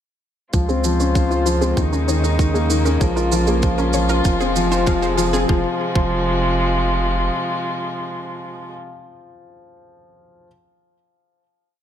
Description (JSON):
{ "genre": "piano and strings electronica", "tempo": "97 BPM", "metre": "4/4", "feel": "straight", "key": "F minor", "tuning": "A4 = 440 Hz", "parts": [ { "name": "muted string quartet", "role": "sustained chords", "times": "0.5-8.7 s", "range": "C3 to C5", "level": "-23 LUFS", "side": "equal", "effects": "low-pass filter" }, { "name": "wide unison pluck", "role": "arpeggios", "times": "0.5-6.1 s", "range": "Eb4 to F5", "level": "-26 LUFS", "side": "left 1 dB", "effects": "auto-pan, sidechain pumping, tape echo" }, { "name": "warm concert grand piano", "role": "riff", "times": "0.5-10.5 s", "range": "Eb3 to Ab4", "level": "-22 LUFS", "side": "left 2 dB", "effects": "tape echo" }, { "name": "round analog bass", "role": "bass", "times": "0.5-7.3 s", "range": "F1 to Eb2", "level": "-22 LUFS", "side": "right 1 dB", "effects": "sidechain pumping" }, { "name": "electronic kick drum", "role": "drums", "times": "0.5-6.1 s", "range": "none", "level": "-21 LUFS", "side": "right 1 dB", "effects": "none" }, { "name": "shaker", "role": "drums", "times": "0.5-5.5 s", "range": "none", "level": "-30 LUFS", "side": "right 8 dB", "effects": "none" } ], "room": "light reverb", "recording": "none", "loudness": "-16 LUFS", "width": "side -10 dB against mid", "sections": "0.5-5.5 build; 5.5-8.0 final chord", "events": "build-up 0.5-5.5; filter sweep on string quartet 0.5-5.5; filter sweep on synth arpeggio sound 0.5-5.5", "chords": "0.5 Dbmaj7; 1.8 Eb7sus4; 3.0 Bbm7; 4.3 Fm", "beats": "| 0.54 1.16 1.78 2.40 | 3.01 3.63 4.25 4.87 | 5.49 6.11 6.72 7.34" }